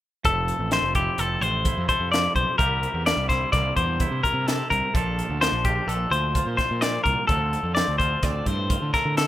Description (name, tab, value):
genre	math rock and midwest emo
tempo	128 BPM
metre	5/4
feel	straight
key	F major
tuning	A4 = 441 Hz
part	twangy electric guitar	accompaniment	0.2-9.3 s	F2 to C5	-33 LUFS	right 10 dB	none
part	fuzz picked electric bass	bass	0.2-9.3 s	F1 to D3	-27 LUFS	right 1 dB	overdrive
part	crisp fusion drum kit	drums	0.2-9.3 s	hi-hat, kick drum, snare drum	-27 LUFS	equal	none
part	clean electric guitar	arpeggios	0.3-9.3 s	G4 to D5	-23 LUFS	left 3 dB	spring reverb
room	small room ambience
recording	rough home demo mix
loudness	-21 LUFS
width	side -14 dB against mid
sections	0.2-9.3 A section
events	none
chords	0.2 Fmaj7; 2.6 C7; 4.9 Bbmaj7; 7.3 Dm7